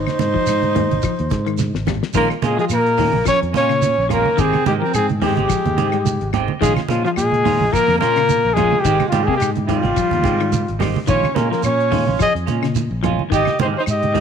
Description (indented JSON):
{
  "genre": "afrobeat",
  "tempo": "107 BPM",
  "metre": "4/4",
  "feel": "swing 55% on 16ths",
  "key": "Bb dorian",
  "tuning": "A4 = 440 Hz",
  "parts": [
    { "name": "breathy trumpet", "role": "melody", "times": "0.0-14.2 s", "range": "F4 to Eb5", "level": "-19 LUFS", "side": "left 3 dB", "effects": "none" },
    { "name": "raspy alto saxophone", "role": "second line", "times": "0.0-14.2 s", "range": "F3 to Ab4", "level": "-24 LUFS", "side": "right 12 dB", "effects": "none" },
    { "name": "semi-hollow electric guitar", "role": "arpeggios", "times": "0.0-14.2 s", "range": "C3 to G3", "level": "-26 LUFS", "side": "left 12 dB", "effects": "slapback echo" },
    { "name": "fingered electric bass", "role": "bass", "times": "0.0-14.2 s", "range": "Ab1 to Bb2", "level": "-23 LUFS", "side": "left 1 dB", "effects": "none" },
    { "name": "cloth-damped thuddy drum kit", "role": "drums", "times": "0.1-14.2 s", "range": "hi-hat, kick drum, snare drum", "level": "-27 LUFS", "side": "left 4 dB", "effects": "none" },
    { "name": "claves", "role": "percussion", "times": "0.1-14.0 s", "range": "none", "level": "-35 LUFS", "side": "left 15 dB", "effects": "none" },
    { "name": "congas", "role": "percussion", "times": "0.1-14.2 s", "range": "none", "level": "-24 LUFS", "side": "right 7 dB", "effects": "none" },
    { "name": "shekere", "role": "percussion", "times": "0.2-14.2 s", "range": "none", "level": "-28 LUFS", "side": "right 5 dB", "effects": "none" },
    { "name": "semi-hollow electric guitar", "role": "stabs", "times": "2.1-14.2 s", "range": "Eb3 to G4", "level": "-25 LUFS", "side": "right 11 dB", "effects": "lush chorus" }
  ],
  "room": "light reverb, studio ambience",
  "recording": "1960s-style stereo with parts hard left and right",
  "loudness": "-15 LUFS",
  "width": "side -7 dB against mid",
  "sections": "0.0-14.2 A section",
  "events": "drum fill 1.6-2.1",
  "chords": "0.0 Ab; 2.1 Bbm7; 4.4 Abmaj7; 6.6 Bbm7; 8.8 Abmaj7; 11.1 Bbm7; 13.3 Abmaj7",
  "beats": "0.47 1.03 1.58 | 2.14 2.70 3.26 3.82 | 4.38 4.94 5.50 6.05 | 6.61 7.17 7.73 8.29 | 8.85 9.41 9.96 10.52 | 11.08 11.64 12.20 12.75 | 13.31 13.87"
}